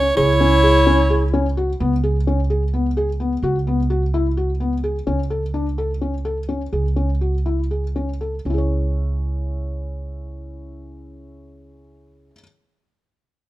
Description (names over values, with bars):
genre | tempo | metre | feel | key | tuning
contemporary instrumental, chamber music in an uneven meter | 233-258 BPM (eighths) | 7/8 | straight | C# minor | A4 = 440 Hz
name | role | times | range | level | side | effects
warm soprano saxophone | melody | 0.0-1.3 s | C#5 | -17 LUFS | right 3 dB | none
felt-muted upright piano | arpeggios | 0.0-12.4 s | B3 to C#5 | -24 LUFS | left 3 dB | none
upright bass | bass | 0.0-12.3 s | C#2 | -21 LUFS | right 1 dB | none
mellow clarinet | second line | 0.2-1.5 s | E4 | -19 LUFS | left 4 dB | none
room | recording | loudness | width
little or no reverb | close, detailed microphones | -18 LUFS | side -15 dB against mid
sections
0.0-1.8 A section; 1.8-8.5 B section; 8.5-12.1 C section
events
slowing down 5.1-8.5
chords
0.2 C#m; 1.8 C#5; 3.4 F#sus4/C#; 5.1 N.C.; 6.7 Amaj7/C# (rootless); 8.5 C#m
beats
| 0.17 0.40 0.63 0.87 1.10 1.33 1.56 | 1.80 2.03 2.26 2.50 2.73 2.96 3.20 | 3.43 3.66 3.90 4.13 4.36 4.60 4.83 | 5.06 5.30 5.53 5.77 6.00 6.24 6.48 | 6.72 6.96 7.21 7.45 7.70 7.95 8.20 | 8.46 8.71 8.97 9.23 9.48 9.74 10.00 | 10.25 10.51 10.77 11.02 11.28 11.54 11.79